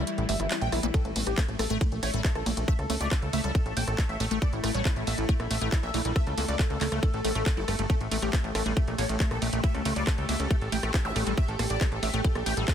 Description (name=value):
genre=psychedelic trance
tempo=138 BPM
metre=4/4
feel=straight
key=unclear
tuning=A4 = 440 Hz
part: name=overtone-sweeping drone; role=sustained chords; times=0.0-12.7 s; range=E3 to A4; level=-36 LUFS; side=left 1 dB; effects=chorus, built-in reverb, sidechain pumping
part: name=liquid acid bass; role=riff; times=0.0-12.7 s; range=G3 to E4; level=-35 LUFS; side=moving between left 3 dB and right 3 dB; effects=phaser, auto-pan, sidechain pumping, ping-pong delay
part: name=plucky analog bass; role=bass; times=0.0-12.6 s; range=G1 to C#2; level=-30 LUFS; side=equal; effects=none
part: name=wide unison lead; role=melody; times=0.1-12.7 s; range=A3 to G5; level=-34 LUFS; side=equal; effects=phaser, sidechain pumping, ping-pong delay
part: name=garage drum kit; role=drums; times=0.1-12.7 s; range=handclaps, hi-hat, ride cymbal, rim click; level=-34 LUFS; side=equal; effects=none
part: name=electronic kick drum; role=drums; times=0.9-12.7 s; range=none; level=-26 LUFS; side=equal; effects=none
part: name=zap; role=sound effects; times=11.0-11.2 s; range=none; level=-39 LUFS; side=equal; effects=none
room=light reverb, digital ambience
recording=dense, heavily limited modern master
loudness=-25 LUFS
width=side -9 dB against mid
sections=0.0-12.7 A section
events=break 0.1-0.9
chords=0.0 A5